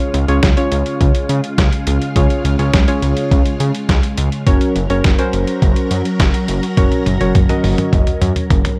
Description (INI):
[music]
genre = synth-pop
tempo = 104 BPM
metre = 4/4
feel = straight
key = Db major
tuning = A4 = 441 Hz
[part]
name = muted felt-like synth keys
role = accompaniment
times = 0.0-8.2 s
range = Db4 to Eb5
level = -22 LUFS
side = equal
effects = chorus
[part]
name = ensemble organ-string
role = sustained chords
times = 0.0-8.8 s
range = Db3 to Bb4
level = -24 LUFS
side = equal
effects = ensemble chorus
[part]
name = fat analog bass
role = bass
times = 0.1-8.6 s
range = Gb1 to Db3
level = -20 LUFS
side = equal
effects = none
[part]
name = lo-fi sampler-style drum kit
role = drums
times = 0.1-8.8 s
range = hi-hat, kick drum, snare drum, toms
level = -18 LUFS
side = equal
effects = overdrive
[sound]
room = little or no reverb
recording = none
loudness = -15 LUFS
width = mono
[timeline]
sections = 0.0-8.8 A section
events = drum fill 6.8-8.8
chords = 0.0 Db; 4.5 Gb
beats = 0.43 1.00 1.58 | 2.16 2.73 3.31 3.89 | 4.46 5.04 5.62 6.20 | 6.77 7.35 7.93 8.50